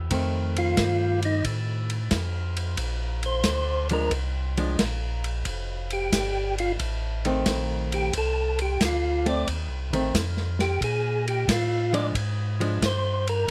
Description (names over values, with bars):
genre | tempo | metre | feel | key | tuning
soul jazz organ trio | 90 BPM | 4/4 | swing 68% on 8ths | F major | A4 = 441 Hz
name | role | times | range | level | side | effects
tonewheel organ | bass | 0.0-13.5 s | F1 to Bb2 | -30 LUFS | equal | slow rotary speaker
archtop guitar, miked and amplified | accompaniment | 0.1-12.8 s | Eb3 to D4 | -31 LUFS | equal | none
warm soul drum kit | drums | 0.1-13.5 s | hi-hat, kick drum, ride cymbal, snare drum | -32 LUFS | equal | none
percussive tonewheel organ | melody | 0.6-13.5 s | Eb4 to D5 | -28 LUFS | equal | chorus vibrato, fast rotary speaker
room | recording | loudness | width
light reverb | close, detailed microphones | -26 LUFS | mono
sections
0.1-13.5 A section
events
tonewheel organ solo 0.1-13.5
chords
0.1 F7; 2.8 Bb7; 5.5 F7; 10.8 Bb7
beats
| 0.12 0.78 1.45 2.12 | 2.79 3.46 4.13 4.79 | 5.46 6.13 6.80 7.47 | 8.14 8.80 9.47 10.14 | 10.81 11.48 12.14 12.81 | 13.48